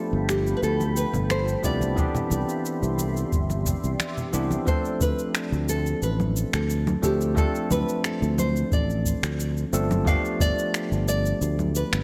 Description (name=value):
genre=sunset chillout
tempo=89 BPM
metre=4/4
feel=straight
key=D dorian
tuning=A4 = 439 Hz
part: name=nylon-string guitar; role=melody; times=0.0-12.0 s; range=G4 to F5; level=-32 LUFS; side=equal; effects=delay
part: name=bell-like tine electric piano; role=accompaniment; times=0.0-12.0 s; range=E3 to A4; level=-31 LUFS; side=equal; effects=vintage 12-bit sampler grit, digital delay
part: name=shimmering ambient pad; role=sustained chords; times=0.0-4.6 s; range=F4 to C6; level=-38 LUFS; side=equal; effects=chorus, built-in reverb, phaser, vintage 12-bit sampler grit
part: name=sustaining fretless electric bass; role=bass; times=0.1-12.0 s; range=G1 to D2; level=-28 LUFS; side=equal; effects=none
part: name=electronic finger snaps, cabasa and congas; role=drums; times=0.3-12.0 s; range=none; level=-32 LUFS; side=equal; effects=none
part: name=congas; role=percussion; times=0.3-4.6 s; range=none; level=-35 LUFS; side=equal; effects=none
part: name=electronic kick drum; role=drums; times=1.6-10.5 s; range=none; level=-28 LUFS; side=equal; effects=overdrive
room=light reverb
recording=none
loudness=-25 LUFS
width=mono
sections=0.0-4.7 A section; 4.7-12.0 B section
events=kick drops out 4.0-4.7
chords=0.0 G9; 2.0 Cmaj9; 4.7 Dm7; 10.1 G9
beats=0.63 1.30 | 1.98 2.65 3.33 4.00 | 4.67 5.35 6.02 6.70 | 7.37 8.04 8.72 9.39 | 10.07 10.74 11.41